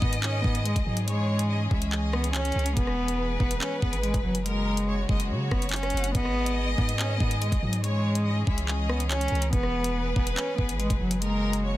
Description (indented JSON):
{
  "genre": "hip hop, drill",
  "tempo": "142 BPM",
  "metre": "4/4",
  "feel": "half-time",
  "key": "unclear",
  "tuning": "A4 = 440 Hz",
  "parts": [
    { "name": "dark cello", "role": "melody", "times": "0.0-11.8 s", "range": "F#3 to C#4", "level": "-29 LUFS", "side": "equal", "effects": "none" },
    { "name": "warm studio violin section", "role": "second line", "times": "0.0-11.8 s", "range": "A#4 to F#5", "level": "-34 LUFS", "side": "equal", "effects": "ping-pong delay" },
    { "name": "warm chamber string section", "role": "sustained chords", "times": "0.0-11.8 s", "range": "C#3 to G#4", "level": "-36 LUFS", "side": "equal", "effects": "none" },
    { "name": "long sustained 808-style bass", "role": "bass", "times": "0.0-11.8 s", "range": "E1 to C#3", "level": "-29 LUFS", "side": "equal", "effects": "none" },
    { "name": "drill drum kit", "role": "drums", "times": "0.0-11.6 s", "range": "handclaps, hi-hat, kick drum, rim click", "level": "-28 LUFS", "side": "equal", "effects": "overdrive" }
  ],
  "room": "studio ambience",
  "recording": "dense, heavily limited modern master",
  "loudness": "-24 LUFS",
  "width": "side -15 dB against mid",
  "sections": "0.0-11.8 A section",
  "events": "none",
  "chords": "0.0 G#m; 1.1 C#m; 2.8 E; 4.5 F#; 6.1 G#m; 7.8 C#m; 9.5 E; 11.2 F#",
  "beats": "0.23 0.66 | 1.08 1.50 1.92 2.35 | 2.77 3.19 3.61 4.04 | 4.46 4.88 5.30 5.72 | 6.15 6.57 6.99 7.42 | 7.84 8.26 8.68 9.11 | 9.53 9.95 10.37 10.80 | 11.22 11.64"
}